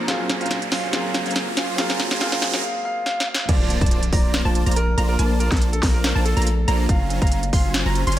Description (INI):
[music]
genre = future bass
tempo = 141 BPM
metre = 4/4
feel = swing 54% on 16ths, half-time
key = unclear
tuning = A4 = 440 Hz
[part]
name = clear grand piano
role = accompaniment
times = 0.0-3.5 s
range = F3 to A4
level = -30 LUFS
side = left 2 dB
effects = sidechain pumping, digital delay
[part]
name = shimmering ambient pad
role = sustained chords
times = 0.0-8.2 s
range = Gb2 to C5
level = -35 LUFS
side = left 1 dB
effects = chorus, built-in reverb, phaser, sidechain pumping
[part]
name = supersaw chords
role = riff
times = 0.0-8.2 s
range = Gb3 to C6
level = -27 LUFS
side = equal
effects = sidechain pumping, low-pass filter
[part]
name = riser and impact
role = sound effects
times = 0.0-5.2 s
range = none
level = -29 LUFS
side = right 1 dB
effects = none
[part]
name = clear grand piano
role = melody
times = 0.1-8.2 s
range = A4 to F5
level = -28 LUFS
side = right 1 dB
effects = sidechain pumping, dub echo
[part]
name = trap drum kit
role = drums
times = 0.1-8.2 s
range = crash cymbal, hi-hat, snare drum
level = -24 LUFS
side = equal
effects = none
[part]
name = wide unison pluck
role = arpeggios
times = 3.5-8.2 s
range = A5 to C6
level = -31 LUFS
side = right 1 dB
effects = sidechain pumping
[part]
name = long sustained 808-style bass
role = bass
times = 3.5-8.2 s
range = Gb1 to Bb1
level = -21 LUFS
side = equal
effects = sidechain pumping
[part]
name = electronic kick drum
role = drums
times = 3.5-7.6 s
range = none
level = -19 LUFS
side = equal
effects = none
[sound]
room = light reverb, digital ambience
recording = high-pass filter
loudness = -18 LUFS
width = side -13 dB against mid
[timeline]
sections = 0.0-3.5 A section; 3.5-8.2 B section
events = build-up 0.0-3.5; drum fill 0.0-2.6, 3.1-3.5; riser 0.0-2.6; break 2.6-3.5; drop 3.5-8.2; impact 3.5-5.2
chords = 0.1 Gbmaj9#11; 3.5 Bbmaj9; 6.9 Gbmaj9#11